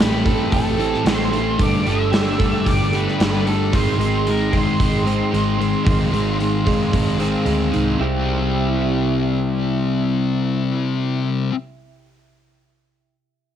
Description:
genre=rock, shoegaze and dream pop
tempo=112 BPM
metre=4/4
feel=straight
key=C major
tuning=A4 = 440 Hz
part: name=octave-fuzz lead guitar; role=melody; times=0.0-7.4 s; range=A4 to E5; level=-27 LUFS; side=right 3 dB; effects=distortion, cassette tape, analog delay
part: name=warbly tape-like pad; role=sustained chords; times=0.0-11.5 s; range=C3 to D6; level=-32 LUFS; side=equal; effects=chorus, built-in reverb, cassette tape
part: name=direct-recorded clean electric guitar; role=arpeggios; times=0.0-11.5 s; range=Eb3 to G4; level=-27 LUFS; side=right 10 dB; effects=analog chorus, cassette tape, analog delay
part: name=overdriven electric guitar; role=riff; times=0.0-11.5 s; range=C3 to A4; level=-25 LUFS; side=right 9 dB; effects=reverse reverb, cassette tape
part: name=thick fuzz guitar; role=riff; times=0.0-11.5 s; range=G2 to C4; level=-21 LUFS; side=left 7 dB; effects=distortion, wide subtle chorus, cassette tape
part: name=vintage muted fingered electric bass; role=bass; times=0.0-11.5 s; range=G1 to D2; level=-25 LUFS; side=equal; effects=tube saturation
part: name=gated 80s drum kit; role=drums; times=0.0-7.9 s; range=hi-hat, kick drum, snare drum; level=-21 LUFS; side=equal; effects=cassette tape
room=light reverb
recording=home recording on cassette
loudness=-17 LUFS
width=side -9 dB against mid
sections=0.0-8.0 A section; 8.0-12.3 B section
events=none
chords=0.0 Am7; 1.6 Gsus2; 3.7 Abmaj7; 8.0 C

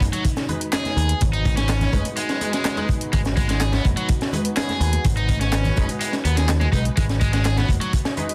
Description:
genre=breakbeat, breaks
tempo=125 BPM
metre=4/4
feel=straight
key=G# minor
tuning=A4 = 441 Hz
part: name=deep dark ambient pad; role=sustained chords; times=0.0-8.3 s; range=D#4 to D#5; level=-36 LUFS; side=equal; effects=chorus, built-in reverb, sidechain pumping
part: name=modern bright picked electric bass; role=bass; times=0.0-7.8 s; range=F#1 to D#2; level=-24 LUFS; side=equal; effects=none
part: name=crunchy breakbeat drum kit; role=drums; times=0.0-8.3 s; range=hi-hat, kick drum, snare drum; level=-25 LUFS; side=equal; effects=none
part: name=congas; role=percussion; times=0.0-8.3 s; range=none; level=-35 LUFS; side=equal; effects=none
part: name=cranked stack guitar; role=riff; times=0.1-7.9 s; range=F#3 to G#4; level=-30 LUFS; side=equal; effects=overdrive, tube saturation, vintage 12-bit sampler grit, tape echo
part: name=punchy analog drum machine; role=drums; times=0.1-8.3 s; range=handclaps, hi-hat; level=-34 LUFS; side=equal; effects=overdrive
part: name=orchestra-hit-like synth stab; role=stabs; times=0.5-8.3 s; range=G#3 to B4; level=-32 LUFS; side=equal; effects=built-in reverb, phaser, cassette tape, tape echo
room=little or no reverb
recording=dense, heavily limited modern master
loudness=-21 LUFS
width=mono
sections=0.0-8.3 A section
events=none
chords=0.0 G#m

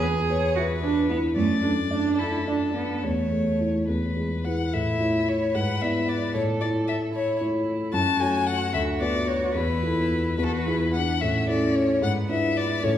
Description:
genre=quick classical-period movement for piano trio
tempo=74 BPM (dotted quarters)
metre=6/8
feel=rubato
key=A major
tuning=A4 = 440 Hz
part: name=rich violin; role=melody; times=0.0-13.0 s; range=A4 to A5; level=-27 LUFS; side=left 4 dB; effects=none
part: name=rich cello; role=second line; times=0.0-13.0 s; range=A3 to B4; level=-28 LUFS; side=right 3 dB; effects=none
part: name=dark grand piano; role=accompaniment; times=0.0-13.0 s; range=D2 to E5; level=-25 LUFS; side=equal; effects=none
room=wet recital hall reverb, RT60 1.6 s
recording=recorded in a church or concert hall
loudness=-22 LUFS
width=side -11 dB against mid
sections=0.0-4.7 A section; 4.7-13.0 B section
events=none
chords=0.0 E; 1.4 D/F#; 3.0 A/E; 3.9 E; 4.7 A; 5.6 E7/G#; 6.3 A; 7.9 F#m; 8.7 Bm/D; 9.6 Esus4; 10.4 E; 11.2 A; 12.0 E7/G#

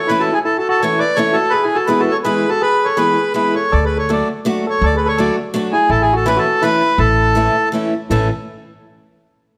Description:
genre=musette waltz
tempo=166 BPM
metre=3/4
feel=rubato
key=A major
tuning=A4 = 440 Hz
part: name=accordion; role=melody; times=0.0-8.3 s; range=G#4 to D5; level=-18 LUFS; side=equal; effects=none
part: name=barky tine electric piano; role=second line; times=0.0-8.3 s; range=E4 to B4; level=-23 LUFS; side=equal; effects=overdrive
part: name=picked acoustic archtop guitar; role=accompaniment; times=0.1-8.3 s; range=E3 to F#4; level=-23 LUFS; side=equal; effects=none
part: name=upright bass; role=bass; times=3.7-8.3 s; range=A1 to D2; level=-20 LUFS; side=equal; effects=none
room=moderate scoring stage reverb, RT60 1.8 s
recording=none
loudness=-16 LUFS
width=mono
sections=0.0-8.1 A section; 8.1-9.2 B section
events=none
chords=0.0 A; 1.5 E; 3.7 D; 5.9 A

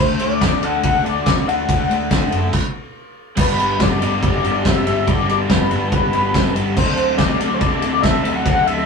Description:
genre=indie rock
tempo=142 BPM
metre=4/4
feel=straight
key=G major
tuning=A4 = 440 Hz
part: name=octave-doubled lead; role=melody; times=0.0-8.9 s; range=B4 to F#5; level=-20 LUFS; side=left 3 dB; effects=chorus, phaser
part: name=crunchy overdriven guitar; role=riff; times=0.0-8.9 s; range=F#3 to A4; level=-22 LUFS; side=equal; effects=none
part: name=fuzz picked electric bass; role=bass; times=0.0-8.8 s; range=F#1 to D2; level=-24 LUFS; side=equal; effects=overdrive
part: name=loose indie drum kit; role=drums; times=0.2-8.8 s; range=crash cymbal, kick drum, ride cymbal, snare drum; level=-19 LUFS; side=equal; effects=none
room=moderate studio ambience, RT60 0.5 s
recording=rough rehearsal-room recording, tube saturation, small room ambience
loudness=-15 LUFS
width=side -5 dB against mid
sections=0.0-3.4 A section; 3.4-8.9 B section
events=stop 2.5-3.4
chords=0.0 D; 3.4 G6; 6.8 D7

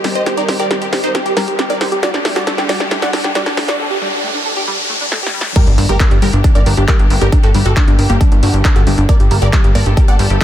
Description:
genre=uplifting trance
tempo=136 BPM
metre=4/4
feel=straight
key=G minor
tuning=A4 = 438 Hz
part: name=wide unison pluck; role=melody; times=0.0-10.4 s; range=Bb3 to F#5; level=-19 LUFS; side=equal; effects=sidechain pumping, dub echo
part: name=warm studio string section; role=sustained chords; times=0.0-10.4 s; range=D3 to A4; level=-26 LUFS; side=left 2 dB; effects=sidechain pumping
part: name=tight sequenced synth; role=arpeggios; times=0.0-10.4 s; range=G3 to C5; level=-23 LUFS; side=equal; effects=chorus, sidechain pumping, ping-pong delay
part: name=punchy analog drum machine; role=drums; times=0.0-10.4 s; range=crash cymbal, handclaps, hi-hat, snare drum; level=-20 LUFS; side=equal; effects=none
part: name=riser and impact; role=sound effects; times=0.9-7.3 s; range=none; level=-23 LUFS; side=equal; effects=none
part: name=electronic kick drum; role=drums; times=5.6-10.4 s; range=none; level=-11 LUFS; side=equal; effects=none
part: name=plucky analog bass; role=bass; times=5.7-10.4 s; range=G1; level=-14 LUFS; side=equal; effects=sidechain pumping
room=light reverb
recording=dense, heavily limited modern master, high-pass filter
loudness=-11 LUFS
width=side -11 dB against mid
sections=0.0-5.6 A section; 5.6-10.4 B section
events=build-up 0.0-5.6; drum fill 0.0-3.8, 5.1-5.6; filter sweep on synth arpeggio sound 0.0-5.6; filter sweep 0.0-5.6; riser 0.9-5.6; drop 5.6-10.4; impact 5.6-7.3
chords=0.0 Cm; 2.0 Dsus4; 5.6 Gm

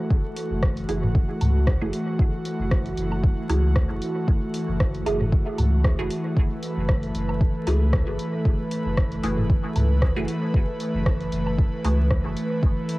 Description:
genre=dub techno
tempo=115 BPM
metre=4/4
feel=swing 55% on 16ths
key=F# minor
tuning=A4 = 439 Hz
part: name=airy breathy pad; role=sustained chords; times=0.0-13.0 s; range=E3 to B4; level=-28 LUFS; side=equal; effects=chorus, sidechain pumping, cassette tape
part: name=bubbling stepped-filter texture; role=texture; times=0.0-13.0 s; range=A3 to B4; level=-38 LUFS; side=left 1 dB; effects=chorus, built-in reverb, sidechain pumping, cassette tape
part: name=warm sub bass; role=bass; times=0.1-12.7 s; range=F#1 to C#2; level=-24 LUFS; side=equal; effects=sidechain pumping
part: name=electronic kick drum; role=drums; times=0.1-12.7 s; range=none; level=-21 LUFS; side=equal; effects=cassette tape
part: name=deep house drum kit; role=drums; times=0.4-13.0 s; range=hi-hat, rim click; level=-33 LUFS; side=equal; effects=cassette tape, dub echo
part: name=filtered dub chord stab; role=stabs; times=0.9-12.0 s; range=A3 to G#4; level=-32 LUFS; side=right 2 dB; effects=phaser, cassette tape, dub echo
part: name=electronic toms and woodblock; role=percussion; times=1.0-12.0 s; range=none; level=-29 LUFS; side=equal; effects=sidechain pumping on toms, cassette tape, sidechain pumping on perc, dub echo
room=little or no reverb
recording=home recording on cassette, vinyl crackle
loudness=-21 LUFS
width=side -20 dB against mid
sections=0.0-13.0 A section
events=none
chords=0.0 F#m9

